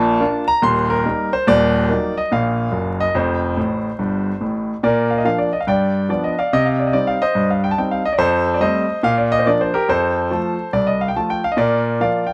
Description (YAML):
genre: jazz, stride piano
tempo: 143 BPM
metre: 4/4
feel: swing 65% on 8ths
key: Bb major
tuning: A4 = 440 Hz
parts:
  - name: bright grand piano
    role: solo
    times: 0.0-12.3 s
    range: Eb1 to C6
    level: -18 LUFS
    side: equal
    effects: none
room: moderate spring reverb, RT60 1.9 s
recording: dark, warm production, vinyl crackle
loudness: -18 LUFS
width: mono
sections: 0.0-4.8 A section; 4.8-12.3 B section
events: grand piano fill 3.6-4.8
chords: 0.0 Bb; 0.6 Eb; 1.5 Ebm; 3.1 F; 4.8 Bb; 5.7 G7; 6.5 Cm; 8.2 F9; 9.0 Bb; 9.9 F; 11.6 Bb